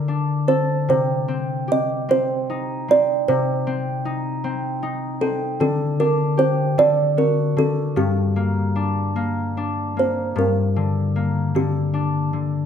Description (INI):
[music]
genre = children's music, lullaby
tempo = 51 BPM (dotted quarters)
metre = 6/8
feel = rubato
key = G minor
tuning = A4 = 440 Hz
[part]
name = kalimba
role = melody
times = 0.0-12.7 s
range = G4 to Eb5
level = -20 LUFS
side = right 3 dB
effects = none
[part]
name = concert harp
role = accompaniment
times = 0.0-12.7 s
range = G2 to Bb4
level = -21 LUFS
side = left 3 dB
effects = none
[sound]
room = moderate recital hall reverb, RT60 1.4 s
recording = none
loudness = -18 LUFS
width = side -8 dB against mid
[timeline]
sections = 0.0-10.4 A section; 10.4-12.7 B section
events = none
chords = 0.0 D5; 0.9 Cm; 5.6 Dsus4; 6.8 D; 8.0 Gm